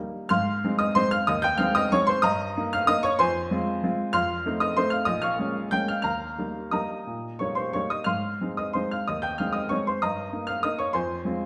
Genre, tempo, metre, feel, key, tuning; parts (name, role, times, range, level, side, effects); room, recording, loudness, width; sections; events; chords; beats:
classical, piano waltz; 164-206 BPM; 3/4; rubato; Ab major; A4 = 438 Hz
clear upright piano; solo; 0.0-11.5 s; Bb1 to G6; -26 LUFS; equal
wet recital hall reverb, RT60 1.3 s; -26 LUFS; mono
0.3-11.5 A section
0.3 Ab; 2.2 Eb/G; 3.2 Fm; 4.1 F7; 5.1 Bbm7; 6.0 Eb; 8.1 Ab; 10.0 Eb/G; 10.9 Fm
| 0.30 0.63 0.96 | 1.27 1.58 1.91 | 2.23 2.56 2.88 | 3.20 3.51 3.83 | 4.14 4.45 4.76 | 5.07 5.38 5.71 | 6.04 6.37 6.72 | 7.06 7.40 7.73 | 8.07 8.40 8.74 | 9.07 9.38 9.70 | 10.02 10.32 10.64 | 10.94 11.24